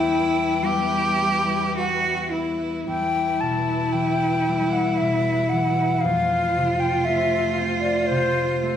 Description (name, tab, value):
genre	celtic folk, Celtic slow air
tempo	53-60 BPM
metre	3/4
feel	rubato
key	unclear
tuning	A4 = 440 Hz
part	bright wooden flute	melody	0.0-8.8 s	C5 to A5	-24 LUFS	left 2 dB	none
part	rich cello	second line	0.0-8.8 s	E4 to G4	-23 LUFS	equal	none
part	concert harp	accompaniment	0.0-8.8 s	E2 to E4	-27 LUFS	equal	none
part	rich studio string section	sustained chords	0.0-8.8 s	G3 to C5	-32 LUFS	right 1 dB	none
room	moderate recital hall reverb, RT60 1.7 s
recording	recorded in a church or concert hall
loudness	-20 LUFS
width	side -9 dB against mid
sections	0.0-2.9 A section; 2.9-8.8 B section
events	none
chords	0.0 Em; 6.1 F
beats	0.65 1.77 | 2.88 3.96 5.00 | 6.05 7.10 8.12